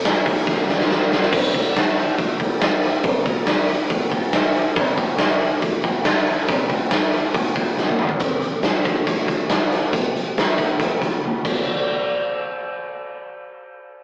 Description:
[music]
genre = rock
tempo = 140 BPM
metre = 4/4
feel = straight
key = none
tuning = none
[part]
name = big rock drum kit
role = drums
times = 0.1-11.6 s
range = crash cymbal, hi-hat, kick drum, snare drum, toms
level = -18 LUFS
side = equal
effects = none
[sound]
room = little or no reverb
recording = rough rehearsal-room recording, warm saturation, AM radio sound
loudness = -17 LUFS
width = side -31 dB against mid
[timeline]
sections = 0.0-1.3 A section; 1.3-8.2 B section; 8.2-11.7 C section; 11.7-14.0 D section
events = drum fill 0.5-1.3, 7.8-8.2, 11.2-11.7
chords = none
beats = 0.05 0.48 0.91 | 1.34 1.77 2.19 2.62 | 3.05 3.48 3.91 4.34 | 4.77 5.20 5.62 6.05 | 6.48 6.91 7.34 7.77 | 8.20 8.63 9.07 9.50 | 9.93 10.36 10.80 11.23

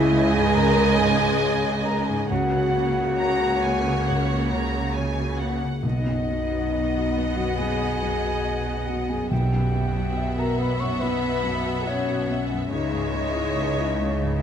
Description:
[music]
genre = cinematic, emotional film score for orchestra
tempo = 69 BPM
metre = 4/4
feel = rubato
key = B major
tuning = A4 = 441 Hz
[part]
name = rich symphonic violin section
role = melody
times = 0.0-14.4 s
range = E5 to A#5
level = -33 LUFS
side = left 1 dB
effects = none
[part]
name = clear symphonic violin section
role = second line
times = 0.0-14.4 s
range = C#5 to E5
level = -32 LUFS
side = right 2 dB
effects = none
[part]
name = concert flute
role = second line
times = 0.0-14.4 s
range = C#5 to C#6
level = -30 LUFS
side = left 1 dB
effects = none
[part]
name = clear symphonic viola section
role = accompaniment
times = 0.0-14.4 s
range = G#3 to B3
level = -33 LUFS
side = right 3 dB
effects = none
[part]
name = felt-muted upright piano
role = accompaniment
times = 0.0-14.4 s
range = B1 to E5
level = -29 LUFS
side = left 2 dB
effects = none
[part]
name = mellow French horn section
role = sustained chords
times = 0.0-14.4 s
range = C#4 to C#5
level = -27 LUFS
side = left 5 dB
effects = none
[part]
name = rich symphonic cello section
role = bass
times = 0.0-14.4 s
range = B2 to C#3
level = -30 LUFS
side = right 2 dB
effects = none
[part]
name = rich symphonic double bass section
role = bass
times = 0.0-14.4 s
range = B1 to C#2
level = -28 LUFS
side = right 3 dB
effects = none
[part]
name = timpani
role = percussion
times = 5.8-10.6 s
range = B2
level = -28 LUFS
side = right 1 dB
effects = none
[sound]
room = moderate scoring stage reverb, RT60 2.0 s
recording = close, detailed microphones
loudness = -21 LUFS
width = side -8 dB against mid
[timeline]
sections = 0.0-14.4 A section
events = none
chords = 0.0 C#madd9; 2.3 F#/C#; 5.8 B; 9.3 Emadd9/B; 12.7 C#madd9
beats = 0.55 1.42 | 2.30 3.19 4.07 4.96 | 5.83 6.71 7.58 8.44 | 9.31 10.17 11.01 11.86 | 12.71 13.57

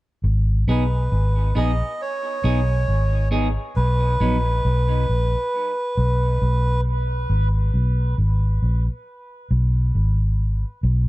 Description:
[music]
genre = dub reggae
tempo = 68 BPM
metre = 4/4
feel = swing 64% on 16ths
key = G# minor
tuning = A4 = 440 Hz
[part]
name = vintage muted fingered electric bass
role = bass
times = 0.2-11.1 s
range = G#1 to B1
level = -18 LUFS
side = equal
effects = none
[part]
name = melodica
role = melody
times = 0.7-6.8 s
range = B4 to D#5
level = -26 LUFS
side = right 1 dB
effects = dub echo
[part]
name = clean electric guitar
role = accompaniment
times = 0.7-4.4 s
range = F#3 to G#4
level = -28 LUFS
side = right 1 dB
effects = dub echo
[sound]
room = light reverb, small room ambience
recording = dark, warm production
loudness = -18 LUFS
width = side -18 dB against mid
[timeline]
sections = 0.2-11.1 A section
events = none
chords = 0.2 G#m; 3.8 N.C.; 7.3 G#m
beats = | 0.22 1.10 1.99 2.87 | 3.75 4.64 5.52 6.40 | 7.29 8.17 9.06 9.94 | 10.82

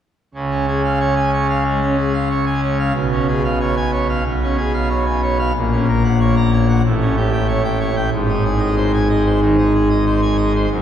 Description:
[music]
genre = classical, organ toccata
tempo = 92 BPM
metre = 4/4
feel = straight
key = unclear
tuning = A4 = 437 Hz
[part]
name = pipe organ, full organ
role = solo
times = 0.3-10.8 s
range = Gb1 to Bb5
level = -15 LUFS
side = equal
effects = none
[sound]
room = wet cathedral reverb, RT60 5.8 s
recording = heard from further back in the room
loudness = -15 LUFS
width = side -9 dB against mid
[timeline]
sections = 0.3-10.8 A section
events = none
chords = 0.3 Db; 3.0 Db7/Cb; 5.6 Gb/Bb; 6.9 A7; 8.1 Ab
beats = | 0.34 0.99 1.65 2.31 | 2.96 3.61 4.26 4.91 | 5.56 6.21 6.86 7.50 | 8.14 8.78 9.43 10.07 | 10.71

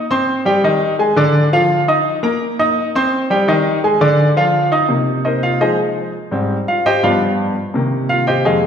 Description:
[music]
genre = latin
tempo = 169 BPM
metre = 4/4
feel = straight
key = C minor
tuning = A4 = 442 Hz
[part]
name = clear grand piano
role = solo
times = 0.0-8.7 s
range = F2 to Eb6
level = -13 LUFS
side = equal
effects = none
[sound]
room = wet recital hall reverb, RT60 1.9 s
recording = recorded in a church or concert hall, nothing above 10.9 kHz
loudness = -13 LUFS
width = side -8 dB against mid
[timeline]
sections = 0.0-4.9 A section; 4.9-8.7 B section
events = grand piano solo 4.9-8.7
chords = 0.0 C5; 0.6 Ab5; 1.3 Dm; 2.1 Bbsus4; 2.8 Cm; 3.5 Ab5; 4.2 Dm; 4.9 Cm7; 5.6 Fm7; 6.3 Abmaj7; 7.0 G7; 7.7 Cm7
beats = 0.28 | 0.64 0.99 1.35 1.70 | 2.06 2.42 2.77 3.12 | 3.48 3.83 4.19 4.54 | 4.90 5.25 5.61 5.96 | 6.32 6.68 7.03 7.39 | 7.74 8.10 8.46

